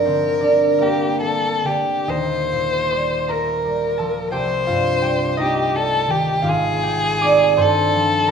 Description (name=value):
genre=classical, impressionist duo for violin and harp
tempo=44-60 BPM (dotted quarters)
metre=6/8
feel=rubato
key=unclear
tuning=A4 = 440 Hz
part: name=rich violin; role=melody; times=0.0-8.3 s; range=G4 to C5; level=-19 LUFS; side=left 3 dB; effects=none
part: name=concert harp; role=accompaniment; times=0.0-8.3 s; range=Eb1 to D6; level=-19 LUFS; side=right 3 dB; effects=none
room=wet recital hall reverb, RT60 1.7 s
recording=minimal, uncompressed stereo recording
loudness=-16 LUFS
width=side -6 dB against mid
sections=0.0-8.3 A section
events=none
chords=0.0 Gmadd9; 2.1 Ebadd9; 4.3 Cm; 6.5 Abmaj7; 7.6 G7sus2